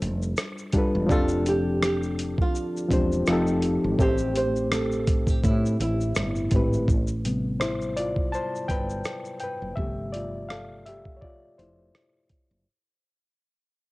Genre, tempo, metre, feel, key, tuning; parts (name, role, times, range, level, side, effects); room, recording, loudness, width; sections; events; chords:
lo-fi hip hop; 83 BPM; 4/4; swing 56% on 16ths; A minor; A4 = 440 Hz
flamenco guitar; melody; 0.0-6.8 s; E4 to C5; -30 LUFS; right 2 dB; cassette tape
overdriven reed electric piano; accompaniment; 0.0-12.7 s; A2 to A5; -26 LUFS; left 1 dB; cassette tape
woody fretless electric bass; bass; 0.0-12.6 s; E1 to A2; -30 LUFS; equal
dusty soul sampler-style drum kit; drums; 0.0-12.5 s; hi-hat, kick drum, rim click, shaker; -26 LUFS; equal; vintage 12-bit sampler grit, cassette tape
deep dark ambient pad; sustained chords; 2.3-6.9 s; F3 to A4; -40 LUFS; right 3 dB
light reverb; home recording on cassette; -23 LUFS; side -21 dB against mid
0.0-6.9 A section; 6.9-12.7 B section
fade-out 6.9-12.7; reed electric piano solo 6.9-12.7
0.0 G9sus4; 1.1 F69; 3.3 F9; 4.0 Am7; 6.9 Am9; 9.8 G9sus4